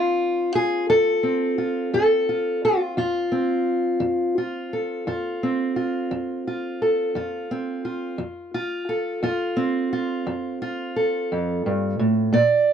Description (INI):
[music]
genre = acoustic country blues, solo or duo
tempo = 58 BPM (dotted quarters)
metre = 12/8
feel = straight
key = F major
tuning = A4 = 440 Hz
[part]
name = fingerpicked steel-string acoustic guitar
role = solo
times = 0.0-12.7 s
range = F2 to D5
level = -21 LUFS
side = equal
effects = none
[sound]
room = light reverb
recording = dry, close 1970s-style studio recording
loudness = -21 LUFS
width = side -8 dB against mid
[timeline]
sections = 0.0-12.7 A section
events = none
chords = 0.0 F